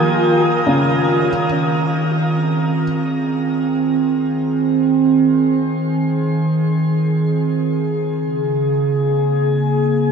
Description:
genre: ambient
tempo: free time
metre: none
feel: none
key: F minor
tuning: A4 = 444 Hz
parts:
  - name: warm velvety synth lead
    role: melody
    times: 0.0-0.8 s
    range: F4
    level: -24 LUFS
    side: equal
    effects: chorus, diffuse ambient delay
  - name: warbly tape-like pad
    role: sustained chords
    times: 0.0-10.1 s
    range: Db3 to Bb4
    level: -16 LUFS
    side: right 2 dB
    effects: chorus, built-in reverb
  - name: felt-muted upright piano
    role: arpeggios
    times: 0.0-2.8 s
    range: Db3 to Bb4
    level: -25 LUFS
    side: equal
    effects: diffuse ambient delay
  - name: wind-like tuned noise texture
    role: texture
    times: 0.0-1.3 s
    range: Eb6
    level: -29 LUFS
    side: right 1 dB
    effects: built-in reverb
room: wet shimmer reverb, RT60 7.0 s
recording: dark, warm production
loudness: -15 LUFS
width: side -6 dB against mid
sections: 0.0-1.3 A section; 1.3-10.1 B section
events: none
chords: 0.0 Ebsus2; 1.3 Fm7; 8.1 Bbm7

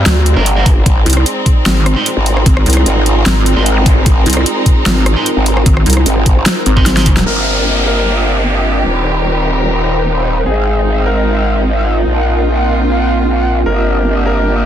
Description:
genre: heavy wobble dubstep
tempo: 150 BPM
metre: 4/4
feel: swing 54% on 16ths, half-time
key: unclear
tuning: A4 = 440 Hz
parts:
  - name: rich studio string section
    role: sustained chords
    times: 0.0-14.7 s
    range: Eb3 to Bb4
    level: -19 LUFS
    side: equal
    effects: sidechain pumping, low-pass filter
  - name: growl bass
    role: bass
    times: 0.0-14.7 s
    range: Eb1 to Bb1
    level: -14 LUFS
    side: equal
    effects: chorus, overdrive
  - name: ethereal airy pad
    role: texture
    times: 0.0-14.7 s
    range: C4 to G5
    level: -20 LUFS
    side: right 2 dB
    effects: ensemble chorus, built-in reverb, sidechain pumping
  - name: pulsing pluck wobble bass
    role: bass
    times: 0.1-7.2 s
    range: Ab1 to D2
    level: -11 LUFS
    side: equal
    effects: chorus, overdrive
  - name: big-room dance drum kit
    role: drums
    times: 0.1-7.2 s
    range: hi-hat, rim click, snare drum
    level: -16 LUFS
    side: equal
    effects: overdrive, low-pass filter on hats, low-pass filter on snare
  - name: sludgy distorted guitar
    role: stabs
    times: 0.4-7.1 s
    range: D4 to C5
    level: -21 LUFS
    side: right 3 dB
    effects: overdrive, ping-pong delay
  - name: electronic kick drum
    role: drums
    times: 0.7-7.1 s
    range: none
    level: -10 LUFS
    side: equal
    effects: none
  - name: zap and downlifter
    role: sound effects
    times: 3.8-3.9, 7.3-10.5 s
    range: none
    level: -19 LUFS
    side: equal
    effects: none
  - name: warm concert grand piano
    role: melody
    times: 7.3-14.7 s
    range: Ab4 to Bb4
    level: -20 LUFS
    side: left 1 dB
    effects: vintage 12-bit sampler grit, ping-pong delay
room: light reverb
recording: dense, heavily limited modern master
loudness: -10 LUFS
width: side -10 dB against mid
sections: 0.0-7.3 A section; 7.3-14.7 B section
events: drop 0.0-7.3; drum fill 6.9-7.3; band accent 7.2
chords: 0.0 Gm; 0.9 Ab; 7.3 Gm; 8.9 Eb; 10.5 Ab; 12.1 Bbsus4; 13.7 Gm

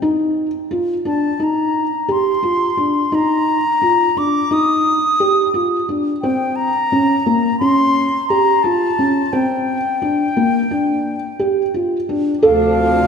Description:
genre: contemporary instrumental, chamber music in an uneven meter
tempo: 174 BPM (eighths)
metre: 9/8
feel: straight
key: unclear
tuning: A4 = 440 Hz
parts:
  - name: felt-muted upright piano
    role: arpeggios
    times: 0.0-12.9 s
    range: Bb3 to A4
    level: -17 LUFS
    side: equal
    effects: none
  - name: reedy concert flute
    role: melody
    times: 1.1-13.1 s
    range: F5 to Eb6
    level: -18 LUFS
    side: left 2 dB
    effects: none
  - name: dark studio string section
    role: sustained chords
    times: 12.4-13.1 s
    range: C3 to D4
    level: -21 LUFS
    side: equal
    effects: none
  - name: mellow bass clarinet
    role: bass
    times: 12.4-13.1 s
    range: D2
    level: -18 LUFS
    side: right 2 dB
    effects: none
room: wet church reverb, RT60 2.9 s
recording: recorded in a church or concert hall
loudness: -14 LUFS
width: side -6 dB against mid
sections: 0.0-12.4 A section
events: none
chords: 0.0 Ebsus2; 6.2 Bbm; 9.3 G5; 12.4 Dm7

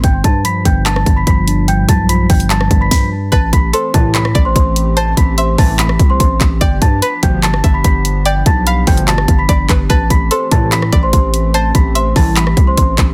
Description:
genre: hip hop, trap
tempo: 146 BPM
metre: 4/4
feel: half-time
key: A minor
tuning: A4 = 441 Hz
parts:
  - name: celesta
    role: melody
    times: 0.0-12.9 s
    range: C5 to B6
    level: -21 LUFS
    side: equal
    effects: tape echo
  - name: mellow tine electric piano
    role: accompaniment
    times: 0.0-3.3 s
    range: G2 to D4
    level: -19 LUFS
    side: equal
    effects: phaser
  - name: growling 808-style bass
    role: bass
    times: 0.0-13.1 s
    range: G1 to A2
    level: -18 LUFS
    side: equal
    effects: none
  - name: trap drum kit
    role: drums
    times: 0.0-13.1 s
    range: handclaps, hi-hat, kick drum, rim click, snare drum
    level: -15 LUFS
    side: equal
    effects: none
  - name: string-like resonator pluck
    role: second line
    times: 3.3-12.7 s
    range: A4 to F5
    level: -24 LUFS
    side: equal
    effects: chorus, tape echo
  - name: hollow soft pad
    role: sustained chords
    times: 3.5-13.1 s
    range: E3 to G4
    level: -27 LUFS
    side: equal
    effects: chorus
  - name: chorused polysynth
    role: stabs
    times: 3.9-12.5 s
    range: C2 to F3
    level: -22 LUFS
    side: equal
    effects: none
room: little or no reverb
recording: dense, heavily limited modern master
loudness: -13 LUFS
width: mono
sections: 0.0-3.3 A section; 3.3-13.1 B section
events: none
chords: 0.0 G7; 3.3 Am7; 6.6 G7; 9.9 Am7

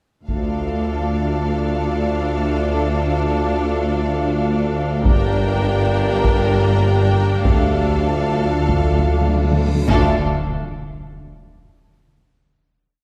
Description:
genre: cinematic, epic orchestral film score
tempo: 100 BPM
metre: 4/4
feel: straight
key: D minor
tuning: A4 = 440 Hz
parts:
  - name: rich studio violin section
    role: melody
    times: 0.3-10.2 s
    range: F5 to G5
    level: -32 LUFS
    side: equal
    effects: none
  - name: clear symphonic violin section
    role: second line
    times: 0.3-10.2 s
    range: A4 to Bb4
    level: -31 LUFS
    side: equal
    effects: none
  - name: rich symphonic viola section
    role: accompaniment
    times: 0.3-10.2 s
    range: D4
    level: -30 LUFS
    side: equal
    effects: none
  - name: warm French horn section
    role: sustained chords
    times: 0.3-10.2 s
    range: A3 to G4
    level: -27 LUFS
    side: equal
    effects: none
  - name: clear tuba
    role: bass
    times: 0.3-10.2 s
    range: G1 to D2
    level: -28 LUFS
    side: equal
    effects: none
  - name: rich symphonic cello section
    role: bass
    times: 0.3-10.2 s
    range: D2 to G2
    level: -26 LUFS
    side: equal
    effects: none
  - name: rich symphonic double bass section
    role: bass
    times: 0.3-10.2 s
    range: G1 to D2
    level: -25 LUFS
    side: equal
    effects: none
  - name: taiko ensemble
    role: drums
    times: 0.3-1.4, 5.1-11.1 s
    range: none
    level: -24 LUFS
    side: equal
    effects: none
  - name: reverse cymbal and impact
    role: sound effects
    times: 9.6-12.3 s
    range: none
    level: -33 LUFS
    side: equal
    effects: none
  - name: timpani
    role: percussion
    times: 7.5-10.2 s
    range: D3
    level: -28 LUFS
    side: equal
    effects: none
room: wet concert hall reverb, RT60 2.0 s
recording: heard from further back in the room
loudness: -18 LUFS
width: mono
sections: 0.3-9.9 theme; 9.9-12.3 final chord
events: timpani fill 7.5-9.9; reverse cymbal 9.6-9.9; impact 9.9-12.3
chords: 0.3 Dm; 5.1 Gm; 7.5 Dm; 9.9 N.C.

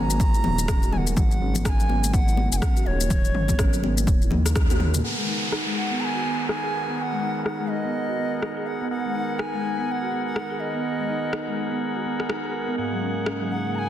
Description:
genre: afro house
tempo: 124 BPM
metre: 4/4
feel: swing 59% on 16ths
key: G# minor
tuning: A4 = 440 Hz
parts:
  - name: bright reedy bass bansuri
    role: melody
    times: 0.0-13.9 s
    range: C#5 to A#5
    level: -30 LUFS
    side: right 1 dB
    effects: digital delay
  - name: warm analog pad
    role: sustained chords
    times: 0.0-13.9 s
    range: G#2 to A#4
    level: -34 LUFS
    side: right 2 dB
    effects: chorus, sidechain pumping
  - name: folk marimba with soft mallets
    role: arpeggios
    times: 0.0-13.7 s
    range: F#3 to G#4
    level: -30 LUFS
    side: equal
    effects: sidechain pumping, low-pass filter, digital delay
  - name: smooth synth bass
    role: bass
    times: 0.0-5.0 s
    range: D#1 to D#2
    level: -25 LUFS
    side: equal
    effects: tube saturation, sidechain pumping
  - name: deep house drum kit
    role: drums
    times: 0.1-13.4 s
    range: rim click, shaker, toms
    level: -31 LUFS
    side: left 2 dB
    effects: overdrive, low-pass filter on perc, low-pass filter on snare, low-pass filter on toms
  - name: electronic kick drum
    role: drums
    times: 0.2-4.7 s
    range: none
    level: -22 LUFS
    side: equal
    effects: overdrive
  - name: congas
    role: percussion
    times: 0.2-4.9 s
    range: none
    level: -31 LUFS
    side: left 2 dB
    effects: none
  - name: tonewheel organ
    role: stabs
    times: 5.0-13.9 s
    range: G#2 to F#5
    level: -31 LUFS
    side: left 2 dB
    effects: overdrive, sidechain pumping, low-pass filter, digital delay
  - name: downlifter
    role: sound effects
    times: 5.0-8.9 s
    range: none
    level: -30 LUFS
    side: equal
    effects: none
room: light reverb, digital ambience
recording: dense, heavily limited modern master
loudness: -22 LUFS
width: side -11 dB against mid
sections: 0.0-5.0 A section; 5.0-13.9 B section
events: drum fill 4.6-5.0; band accent 4.6; filter sweep on drum 5.0-13.9; filter sweep on marimba 5.0-13.9; filter sweep on tonewheel organ 5.0-13.9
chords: 0.0 F#add9; 5.0 G#m9; 12.8 F#add9/G#

